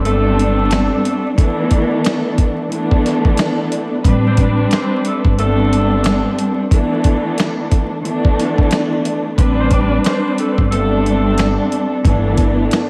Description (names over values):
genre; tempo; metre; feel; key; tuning
hip hop, boom-bap hip-hop; 90 BPM; 4/4; swing 61% on 16ths; A minor; A4 = 440 Hz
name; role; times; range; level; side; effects
dark studio string section; accompaniment; 0.0-12.9 s; E3 to B4; -19 LUFS; equal; cassette tape, high-pass filter, low-pass filter
warm saxophone section; stabs; 0.0-11.5 s; A3 to D5; -26 LUFS; equal; high-pass filter, low-pass filter, analog delay
upright bass; bass; 0.0-12.6 s; G1 to A1; -20 LUFS; equal; none
dusty soul sampler-style drum kit; drums; 0.1-12.9 s; hi-hat, kick drum, snare drum; -18 LUFS; equal; none
room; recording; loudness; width
moderate plate reverb, RT60 2.0 s; dreamy mix soaked in reverb, vinyl crackle; -16 LUFS; mono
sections
0.0-12.9 A section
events
none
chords
0.0 Am11; 1.4 E7sus4; 4.0 Am11; 6.7 E7sus4; 9.4 Am11; 12.0 G69